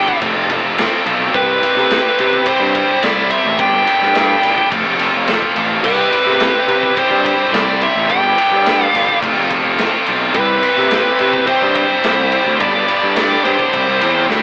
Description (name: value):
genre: indie rock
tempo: 107 BPM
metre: 4/4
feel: straight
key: C major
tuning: A4 = 441 Hz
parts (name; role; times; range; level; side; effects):
- smooth overdriven lead guitar; melody; 0.0-14.3 s; B4 to G5; -15 LUFS; equal; none
- metallic FM bell; second line; 0.0-14.3 s; G5 to D6; -26 LUFS; equal; none
- heavy high-gain guitar; riff; 0.0-14.4 s; F2 to G4; -18 LUFS; equal; distortion
- scooped high-gain guitar; riff; 0.0-14.4 s; F3 to A4; -20 LUFS; equal; distortion
- fuzz picked electric bass; bass; 0.0-14.4 s; F1 to C3; -20 LUFS; equal; overdrive
- raw garage drum kit; drums; 0.1-14.4 s; crash cymbal, kick drum, ride cymbal, snare drum; -19 LUFS; equal; none
- overdriven combo organ; sustained chords; 5.8-14.4 s; C4 to C6; -27 LUFS; equal; none
room: moderate studio reverb, RT60 0.8 s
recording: band playing live in one room, AM radio sound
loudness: -11 LUFS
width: side -30 dB against mid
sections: 0.0-14.4 A section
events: none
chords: 0.2 F; 1.4 Cmaj7; 3.6 G; 4.7 F; 5.8 Cmaj7; 8.1 Gadd9; 9.2 F; 10.3 Cmaj7; 12.6 Gadd9; 13.7 C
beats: 0.23 0.79 | 1.35 1.91 2.47 3.04 | 3.60 4.16 4.72 5.28 | 5.85 6.41 6.97 7.53 | 8.10 8.66 9.22 9.79 | 10.35 10.91 11.47 12.04 | 12.60 13.16 13.73 14.29